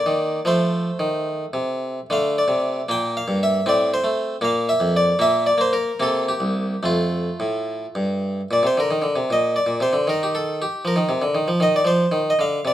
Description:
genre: classical, baroque-style suite movement for harpsichord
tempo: 70-80 BPM (dotted quarters)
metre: 6/8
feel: rubato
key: F major, Bb major from 8.5 s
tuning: A4 = 438 Hz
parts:
  - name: harpsichord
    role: solo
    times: 0.0-12.7 s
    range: C2 to G5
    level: -18 LUFS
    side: equal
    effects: none
room: moderate stone room reverb, RT60 1.1 s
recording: minimal, uncompressed stereo recording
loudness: -18 LUFS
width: side -12 dB against mid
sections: 0.0-8.5 A section; 8.5-12.7 A section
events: none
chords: 0.5 F; 2.1 D5; 2.9 Gm/Bb; 3.7 Amadd11; 4.4 Bb5; 5.2 N.C.; 6.0 C5; 6.8 F; 8.5 Bb; 10.1 Eb5; 11.6 F5/Eb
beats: | 0.47 1.27 | 2.10 2.89 | 3.66 4.42 | 5.18 5.98 | 6.81 7.67 | 8.51 9.29 | 10.06 10.85 | 11.62 12.40

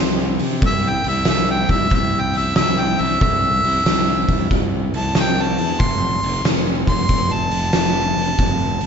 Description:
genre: blues rock power trio and southern rock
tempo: 93 BPM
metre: 4/4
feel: swing 66% on 8ths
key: C major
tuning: A4 = 440 Hz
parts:
  - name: clear harmonica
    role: melody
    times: 0.0-8.9 s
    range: C5 to C6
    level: -21 LUFS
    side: equal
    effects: overdrive, slapback echo
  - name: fuzz fingered electric bass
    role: bass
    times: 0.0-8.9 s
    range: F1 to C3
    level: -23 LUFS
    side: equal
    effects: overdrive
  - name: oversized low-tuned drum kit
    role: drums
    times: 0.4-8.9 s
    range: hi-hat, kick drum, snare drum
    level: -18 LUFS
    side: equal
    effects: none
room: moderate concert hall reverb, RT60 2.1 s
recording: big arena sound, nothing above 7.7 kHz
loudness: -16 LUFS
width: side -7 dB against mid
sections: 0.0-8.9 A section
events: harmonica solo 0.0-8.9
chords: 0.0 C; 5.8 F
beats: | 0.63 1.28 1.93 2.58 | 3.22 3.87 4.52 5.16 | 5.81 6.46 7.10 7.75 | 8.39

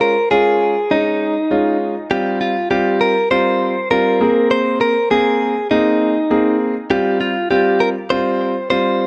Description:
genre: pop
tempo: 100 BPM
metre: 4/4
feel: straight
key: F minor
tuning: A4 = 440 Hz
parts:
  - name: direct-recorded clean electric guitar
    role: melody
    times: 0.0-9.1 s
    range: Eb4 to C5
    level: -18 LUFS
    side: equal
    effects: dub echo
  - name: clear concert grand piano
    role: accompaniment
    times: 0.0-9.1 s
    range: G3 to Ab4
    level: -20 LUFS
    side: equal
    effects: none
room: moderate plate reverb, RT60 2.8 s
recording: echo-heavy mix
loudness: -16 LUFS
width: mono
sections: 0.0-9.1 A section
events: none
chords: 0.0 Db; 2.1 Fsus2; 4.2 Abadd9; 6.9 Fsus2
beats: 0.31 0.91 1.51 | 2.11 2.71 3.31 3.91 | 4.51 5.11 5.71 6.31 | 6.91 7.51 8.11 8.71

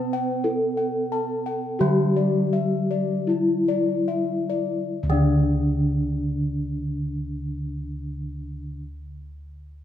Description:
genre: Javanese gamelan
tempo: 35-47 BPM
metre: 4/4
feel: straight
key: D slendro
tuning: A4 = 439 Hz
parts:
  - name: gamelan-type bronze metallophone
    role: melody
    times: 0.0-8.8 s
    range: D4 to C5-45c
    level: -26 LUFS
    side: left 2 dB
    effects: none
  - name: gamelan-type bronze metallophone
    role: accompaniment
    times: 0.0-8.8 s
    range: D3 to C4-45c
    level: -26 LUFS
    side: right 1 dB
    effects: none
  - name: gamelan-type bossed gongs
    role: arpeggios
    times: 0.0-8.8 s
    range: D5 to A5+25c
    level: -31 LUFS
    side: left 8 dB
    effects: none
  - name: gamelan-type bossed gongs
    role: bass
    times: 0.0-8.7 s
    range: D2 to C5-45c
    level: -30 LUFS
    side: equal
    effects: none
room: moderate recital hall reverb, RT60 1.7 s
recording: minimal, uncompressed stereo recording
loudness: -21 LUFS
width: side -10 dB against mid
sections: 0.0-4.9 A section; 4.9-9.8 B section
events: slowing down 0.0-4.9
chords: none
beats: 0.45 1.80 3.28 | 4.91 6.61 8.32

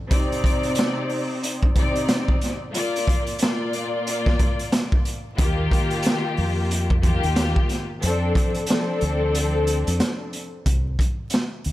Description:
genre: hip hop, boom-bap hip-hop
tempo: 91 BPM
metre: 4/4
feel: swing 60% on 16ths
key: unclear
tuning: A4 = 440 Hz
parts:
  - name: warm studio string section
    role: accompaniment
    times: 0.1-10.4 s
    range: Bb2 to D5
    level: -24 LUFS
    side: left 2 dB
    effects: cassette tape, high-pass filter, low-pass filter
  - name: raw garage drum kit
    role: drums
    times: 0.1-11.7 s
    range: hi-hat, kick drum, snare drum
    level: -22 LUFS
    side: equal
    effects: none
  - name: deep dub fingered electric bass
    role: bass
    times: 5.4-11.7 s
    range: C2 to F2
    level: -23 LUFS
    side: equal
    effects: none
room: small room ambience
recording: vinyl crackle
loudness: -20 LUFS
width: side -15 dB against mid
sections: 0.0-10.7 A section; 10.7-11.7 B section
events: kick muted 9.3-10.7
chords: 0.1 Cmadd9; 2.7 Bb; 5.4 Ebadd9; 8.0 F6; 10.7 N.C.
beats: | 0.11 0.77 1.43 2.09 | 2.75 3.41 4.07 4.73 | 5.39 6.04 6.70 7.36 | 8.02 8.68 9.34 10.00 | 10.66 11.32

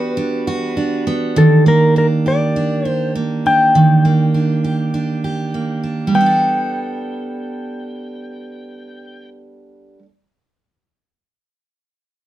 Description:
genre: acoustic pop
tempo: 101 BPM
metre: 4/4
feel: straight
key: G major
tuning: A4 = 440 Hz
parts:
  - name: clean lap steel guitar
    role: melody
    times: 0.0-9.3 s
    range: A4 to G5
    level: -17 LUFS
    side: left 2 dB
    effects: none
  - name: picked steel-string acoustic guitar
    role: accompaniment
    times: 0.0-10.1 s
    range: Eb3 to A4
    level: -16 LUFS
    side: right 2 dB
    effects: none
room: moderate studio reverb, RT60 0.5 s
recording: none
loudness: -13 LUFS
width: side -13 dB against mid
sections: 0.0-1.4 A section; 1.4-6.1 B section; 6.1-8.5 C section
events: none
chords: 0.0 Gmaj7; 1.4 Ebmaj7; 6.1 Gadd9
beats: 0.18 0.77 | 1.37 1.96 2.56 3.15 | 3.75 4.34 4.94 5.54 | 6.13 6.73 7.33 7.92

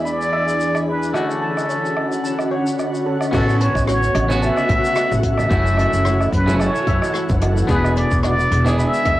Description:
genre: sunset chillout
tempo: 110 BPM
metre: 4/4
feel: swing 55% on 16ths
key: A major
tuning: A4 = 439 Hz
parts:
  - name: trumpet with plunger mute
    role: melody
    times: 0.0-9.2 s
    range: A4 to E5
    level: -22 LUFS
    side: equal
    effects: cassette tape, tape echo
  - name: semi-hollow electric guitar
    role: accompaniment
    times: 0.0-9.2 s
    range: E2 to G#4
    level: -26 LUFS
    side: equal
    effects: auto-pan, cassette tape
  - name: shimmering ambient pad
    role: sustained chords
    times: 0.0-9.2 s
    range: C#3 to G#4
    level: -24 LUFS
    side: equal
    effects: chorus, built-in reverb, cassette tape
  - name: drifting glass-harmonics texture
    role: texture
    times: 0.0-3.3 s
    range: B5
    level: -41 LUFS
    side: right 3 dB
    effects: none
  - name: steel pan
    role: arpeggios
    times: 0.1-9.2 s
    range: F#4 to B5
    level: -30 LUFS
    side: left 1 dB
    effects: cassette tape, analog delay
  - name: jazz brush drum kit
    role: drums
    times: 0.1-9.2 s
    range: crash cymbal, hi-hat, rim click, shaker, woodblock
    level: -28 LUFS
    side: right 2 dB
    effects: cassette tape
  - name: upright bass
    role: bass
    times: 3.3-9.2 s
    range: E1 to A2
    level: -19 LUFS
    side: equal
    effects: none
  - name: electronic kick drum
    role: drums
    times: 3.3-9.2 s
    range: none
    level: -22 LUFS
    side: equal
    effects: cassette tape
  - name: congas and bongos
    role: percussion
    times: 3.3-9.2 s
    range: none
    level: -29 LUFS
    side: right 2 dB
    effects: none
room: moderate booth ambience, RT60 0.3 s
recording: home recording on cassette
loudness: -16 LUFS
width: side -15 dB against mid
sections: 0.0-3.3 A section; 3.3-9.2 B section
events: filter sweep on clean electric guitar 0.0-3.3; filter sweep on steel pan 0.0-3.3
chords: 0.0 E7; 1.1 Dmaj7; 3.3 A6; 5.5 F#m7; 7.7 E7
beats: 0.06 0.60 | 1.15 1.69 2.24 2.78 | 3.33 3.87 4.42 4.96 | 5.51 6.06 6.60 7.15 | 7.69 8.24 8.78

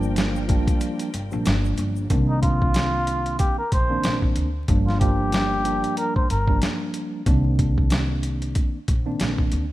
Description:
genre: hip hop, boom-bap hip-hop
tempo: 93 BPM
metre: 4/4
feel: swing 57% on 16ths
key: C minor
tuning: A4 = 439 Hz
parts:
  - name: mellow tine electric piano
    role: accompaniment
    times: 0.0-9.7 s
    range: Eb3 to D4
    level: -27 LUFS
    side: right 1 dB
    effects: medium stereo tremolo, high-pass filter, low-pass filter
  - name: warm studio string section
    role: sustained chords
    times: 0.0-2.1 s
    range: F4 to G5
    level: -38 LUFS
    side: left 1 dB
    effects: high-pass filter, low-pass filter
  - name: upright bass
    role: bass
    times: 0.0-9.7 s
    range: G1 to D2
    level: -24 LUFS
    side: equal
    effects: none
  - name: egg shaker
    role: percussion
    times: 0.0-2.1 s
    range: none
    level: -50 LUFS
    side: left 4 dB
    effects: none
  - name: boom bap sampler-style drum kit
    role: drums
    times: 0.2-9.7 s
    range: hi-hat, kick drum, snare drum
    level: -22 LUFS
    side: equal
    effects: none
  - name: trumpet with cup mute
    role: melody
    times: 2.3-6.6 s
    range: Eb4 to C5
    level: -26 LUFS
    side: equal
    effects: high-pass filter, low-pass filter, slapback echo
room: small room reverb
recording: rough home demo mix, vinyl crackle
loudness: -20 LUFS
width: side -16 dB against mid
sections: 0.0-2.1 A section; 2.1-9.7 B section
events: break 0.8-2.1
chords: 0.0 Gm7; 2.1 Cm9; 4.7 Gm7; 7.3 Cm9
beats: 0.17 0.81 1.46 | 2.10 2.75 3.40 4.04 | 4.68 5.33 5.97 6.62 | 7.26 7.91 8.56 9.20

